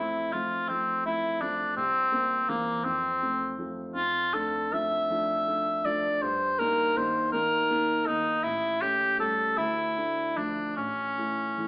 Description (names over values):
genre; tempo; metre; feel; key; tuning
classical, romantic duo for cor anglais and grand piano; 49-56 BPM (dotted quarters); 6/8; rubato; D minor from 4.0 s; A4 = 441 Hz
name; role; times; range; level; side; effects
mellow cor anglais; melody; 0.0-11.7 s; Bb3 to E5; -26 LUFS; equal; none
dark concert grand piano; accompaniment; 0.0-11.7 s; A1 to E4; -34 LUFS; equal; none
room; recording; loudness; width
moderate recital hall reverb, RT60 1.4 s; worn, warbling old tape, cassette tape, warbly pitch drift, AM radio sound; -25 LUFS; side -26 dB against mid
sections
0.0-11.7 A section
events
none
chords
0.0 F; 1.8 C7; 2.8 F; 4.0 Dm/F; 6.2 Eb/G; 8.4 A7; 9.6 Dm; 10.8 A